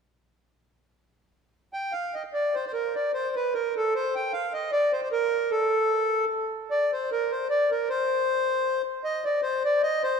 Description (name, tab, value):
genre	musette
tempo	152 BPM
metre	3/4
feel	swing 53% on 8ths, rubato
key	unclear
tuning	A4 = 440 Hz
part	accordion	solo	1.7-10.2 s	A4 to G5	-24 LUFS	equal	none
room	wet church reverb, RT60 2.9 s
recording	recorded in a church or concert hall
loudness	-24 LUFS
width	side -6 dB against mid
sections	0.7-1.9 A section; 1.9-6.7 B section; 6.7-10.2 C section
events	none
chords	none